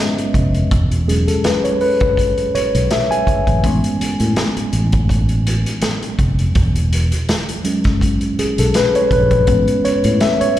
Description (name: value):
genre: lush 1970s-style soul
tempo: 82 BPM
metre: 4/4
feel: swing 54% on 16ths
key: E major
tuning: A4 = 441 Hz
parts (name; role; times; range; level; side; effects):
- mellow tine electric piano; accompaniment; 0.0-10.6 s; F#3 to G#5; -17 LUFS; left 1 dB; auto-pan, slapback echo
- vintage drum kit; drums; 0.2-10.6 s; hi-hat, kick drum, snare drum; -19 LUFS; equal; none
- fingered electric bass; bass; 0.3-10.4 s; E1 to A2; -16 LUFS; equal; none
room: light reverb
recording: live gig heard through the venue's PA, recital hall reverb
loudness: -14 LUFS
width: side -12 dB against mid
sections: 0.0-10.6 A section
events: tine electric piano solo 0.0-10.6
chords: 0.0 Amaj9 (rootless); 0.7 E6; 3.6 Amaj9; 6.6 E6; 9.5 Amaj9